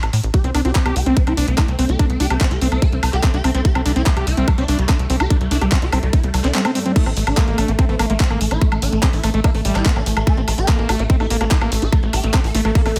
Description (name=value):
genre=psychedelic trance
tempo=145 BPM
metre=4/4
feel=straight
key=unclear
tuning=A4 = 440 Hz
part: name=tight sequencer bass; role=bass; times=0.0-13.0 s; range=A1 to A2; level=-22 LUFS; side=equal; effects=none
part: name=garage drum kit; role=drums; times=0.0-13.0 s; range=crash cymbal, handclaps, hi-hat, woodblock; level=-27 LUFS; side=equal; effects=overdrive, studio reverb
part: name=swarming rave lead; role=melody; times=0.3-13.0 s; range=G3 to A4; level=-26 LUFS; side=equal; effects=chorus, phaser, sidechain pumping, tape echo
part: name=bubbling stepped-filter texture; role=sustained chords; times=1.0-13.0 s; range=A3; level=-33 LUFS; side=equal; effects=chorus, built-in reverb, sidechain pumping
part: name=electronic kick drum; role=drums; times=0.3-12.8 s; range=none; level=-18 LUFS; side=equal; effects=overdrive, studio reverb
part: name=screaming distorted acid line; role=riff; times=0.4-12.9 s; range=G3 to G4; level=-26 LUFS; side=equal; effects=distortion, chorus, sidechain pumping, delay
room=digital ambience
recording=none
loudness=-17 LUFS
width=mono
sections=0.0-7.0 A section; 7.0-13.0 B section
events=drop 7.0-13.0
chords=0.3 C5; 7.0 N.C.